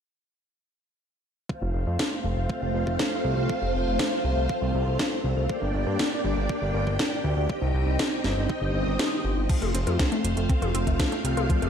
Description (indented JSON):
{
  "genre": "italo disco",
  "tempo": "120 BPM",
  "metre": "4/4",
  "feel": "straight",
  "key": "unclear",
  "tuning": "A4 = 440 Hz",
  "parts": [
    { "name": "string machine, full ensemble", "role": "sustained chords", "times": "1.5-11.7 s", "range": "A3 to G5", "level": "-28 LUFS", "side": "equal", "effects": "phaser, ensemble chorus" },
    { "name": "electronic kick drum", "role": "drums", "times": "1.5-11.6 s", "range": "none", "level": "-27 LUFS", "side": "equal", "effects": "overdrive, high-pass filter on kick" },
    { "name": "fat analog bass", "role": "bass", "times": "1.6-11.7 s", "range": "F1 to G2", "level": "-27 LUFS", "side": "equal", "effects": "none" },
    { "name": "house drum kit", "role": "drums", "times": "2.0-11.7 s", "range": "crash cymbal, hi-hat, snare drum, toms", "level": "-29 LUFS", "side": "left 1 dB", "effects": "gated reverb" },
    { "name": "analog pluck", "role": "arpeggios", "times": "9.5-11.7 s", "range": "F3 to F4", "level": "-33 LUFS", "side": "left 4 dB", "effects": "chorus, digital delay" }
  ],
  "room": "light reverb",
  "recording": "none",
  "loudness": "-23 LUFS",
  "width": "side -8 dB against mid",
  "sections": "1.5-9.5 A section; 9.5-11.7 B section",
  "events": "kick drops out 9.0-9.5",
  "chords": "1.5 F; 5.5 Gm; 7.5 Cm; 9.5 F"
}